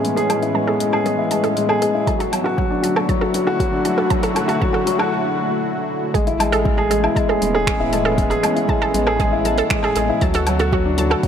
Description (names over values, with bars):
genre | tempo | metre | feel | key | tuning
piano and strings electronica | 118 BPM | 4/4 | straight | A major | A4 = 440 Hz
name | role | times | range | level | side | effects
lush unison pad | sustained chords | 0.0-11.3 s | A2 to F#4 | -25 LUFS | equal | chorus, sidechain pumping
warm upright piano | riff | 0.0-11.3 s | F#3 to G#4 | -19 LUFS | left 1 dB | digital delay
warm sub bass | bass | 0.0-11.2 s | E1 to D2 | -24 LUFS | right 1 dB | sidechain pumping, high-pass filter
deep house drum kit | drums | 0.0-11.3 s | finger snaps, hi-hat, woodblock | -25 LUFS | equal | overdrive
analog pluck | arpeggios | 0.2-11.2 s | F#4 to A5 | -25 LUFS | right 4 dB | chorus, sidechain pumping, digital delay
electronic kick drum | drums | 2.1-11.3 s | none | -22 LUFS | right 1 dB | overdrive
room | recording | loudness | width
moderate lush hall reverb, RT60 2.2 s | none | -16 LUFS | side -8 dB against mid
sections
0.0-6.1 A section; 6.1-11.3 B section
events
build-up 0.0-6.1; filter sweep on synth arpeggio sound 0.0-6.1; break 5.1-6.1; drop 6.1-11.3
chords
0.0 Amaj7; 2.1 Dmaj7; 6.1 Amaj7; 10.2 Dmaj7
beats
| 0.04 0.55 1.06 1.57 | 2.08 2.59 3.10 3.60 | 4.11 4.62 5.13 5.64 | 6.15 6.66 7.16 7.67 | 8.18 8.69 9.20 9.71 | 10.21 10.72 11.23